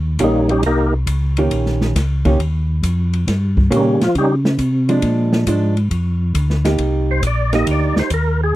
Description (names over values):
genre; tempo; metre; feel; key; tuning
soul jazz organ trio; 136 BPM; 4/4; swing 68% on 8ths; unclear; A4 = 440 Hz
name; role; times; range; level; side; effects
mellow tonewheel organ; bass; 0.0-8.5 s; Bb1 to Db3; -17 LUFS; equal; overdrive, chorus vibrato, slow rotary speaker
percussive tonewheel organ; melody; 0.2-0.9, 3.8-4.4, 7.1-8.6 s; Db3 to Eb5; -17 LUFS; equal; slow rotary speaker, overdrive, chorus vibrato
hollow-body jazz guitar; accompaniment; 0.2-8.1 s; Eb3 to G4; -19 LUFS; right 3 dB; none
open jazz drum kit; drums; 0.2-8.2 s; hi-hat, kick drum, ride cymbal, snare drum; -20 LUFS; equal; none
room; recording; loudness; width
light reverb; dry, close 1970s-style studio recording; -14 LUFS; side -16 dB against mid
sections
0.0-8.6 A section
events
tonewheel organ solo 0.0-8.6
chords
0.0 Eb7; 5.0 Bb7; 6.8 Cm7